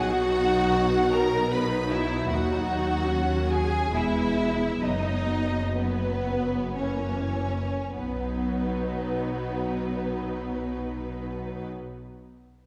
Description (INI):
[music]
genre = classical, slow romantic movement for string orchestra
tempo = 49-78 BPM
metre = 3/4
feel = rubato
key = B major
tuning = A4 = 441 Hz
[part]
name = rich symphonic violin section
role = melody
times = 0.0-11.7 s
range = B4 to B5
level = -38 LUFS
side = equal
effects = none
[part]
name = warm symphonic violin section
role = second line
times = 0.0-11.7 s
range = B3 to B4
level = -31 LUFS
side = equal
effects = none
[part]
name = rich symphonic viola section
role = accompaniment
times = 0.0-11.7 s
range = E3 to D#4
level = -33 LUFS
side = equal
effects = none
[part]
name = rich symphonic cello section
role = bass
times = 0.0-11.7 s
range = D#2 to B2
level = -36 LUFS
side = equal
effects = none
[part]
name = rich symphonic double bass section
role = bass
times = 0.0-11.7 s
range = E1 to D#2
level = -35 LUFS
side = equal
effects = none
[sound]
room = wet scoring stage reverb, RT60 1.8 s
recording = heard from further back in the room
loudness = -27 LUFS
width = mono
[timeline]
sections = 0.0-7.9 A section; 7.9-11.4 B section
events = slowing down 1.1-7.9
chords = 0.0 B; 2.3 D#m; 3.9 E; 4.8 B/F#; 6.8 F#7; 7.9 B